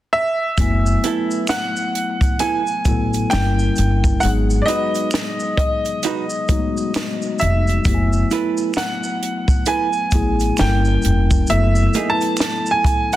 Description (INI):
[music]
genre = R&B, neo-soul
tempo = 66 BPM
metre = 4/4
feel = swing 60% on 16ths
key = F# dorian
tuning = A4 = 439 Hz
[part]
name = bright grand piano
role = melody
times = 0.1-13.2 s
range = D5 to A5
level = -22 LUFS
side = right 1 dB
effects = none
[part]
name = tine electric piano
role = accompaniment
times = 0.6-13.2 s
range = F#3 to G#5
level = -23 LUFS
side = left 4 dB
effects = wide subtle chorus
[part]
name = upright bass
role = bass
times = 0.6-11.9 s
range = E#1 to A1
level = -18 LUFS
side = equal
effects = none
[part]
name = compact cocktail drum kit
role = drums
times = 0.6-13.2 s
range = hi-hat, kick drum, snare drum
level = -21 LUFS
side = equal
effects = none
[part]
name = maracas and finger snaps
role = percussion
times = 0.6-13.2 s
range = none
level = -32 LUFS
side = right 2 dB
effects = none
[part]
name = vintage hollow-body jazz guitar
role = second line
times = 1.0-12.4 s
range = B3 to B4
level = -23 LUFS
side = right 8 dB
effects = none
[sound]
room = light reverb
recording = dense, heavily limited modern master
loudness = -16 LUFS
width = side -14 dB against mid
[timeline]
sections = 0.6-13.2 A section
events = none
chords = 0.0 N.C.; 0.6 F#m11; 3.3 Gdim7; 4.2 G#m7; 7.9 F#m11; 10.6 Gdim7; 11.5 F#m11